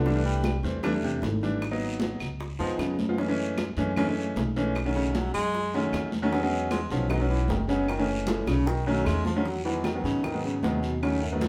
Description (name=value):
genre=Afro-Cuban jazz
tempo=153 BPM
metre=4/4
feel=straight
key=E major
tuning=A4 = 443 Hz
part: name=warm baritone saxophone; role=second line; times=0.0-11.5 s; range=F#2 to G#3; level=-33 LUFS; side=equal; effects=none
part: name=bright upright piano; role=accompaniment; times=0.0-11.5 s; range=D#3 to E#4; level=-31 LUFS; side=equal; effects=none
part: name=upright bass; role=bass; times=0.0-11.5 s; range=F#1 to G#2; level=-33 LUFS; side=equal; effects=none
part: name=congas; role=percussion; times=0.0-11.5 s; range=none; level=-36 LUFS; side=equal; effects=none
part: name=bongos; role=percussion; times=0.1-11.5 s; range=none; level=-39 LUFS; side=equal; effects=none
part: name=guiro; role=percussion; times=0.1-11.5 s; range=none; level=-47 LUFS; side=equal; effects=none
part: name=claves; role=percussion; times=0.5-11.2 s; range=none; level=-44 LUFS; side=equal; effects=none
room=moderate large studio reverb, RT60 0.9 s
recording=band playing live in one room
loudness=-27 LUFS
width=mono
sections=0.0-9.5 A section; 9.5-11.5 A section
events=baritone saxophone solo 0.0-11.5; drum fill 8.3-9.5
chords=0.1 C69; 1.6 G#m7; 2.4 C#7; 3.2 F#m9; 4.8 B7; 6.3 E69; 7.9 F#m7; 8.7 B7; 9.5 Emaj7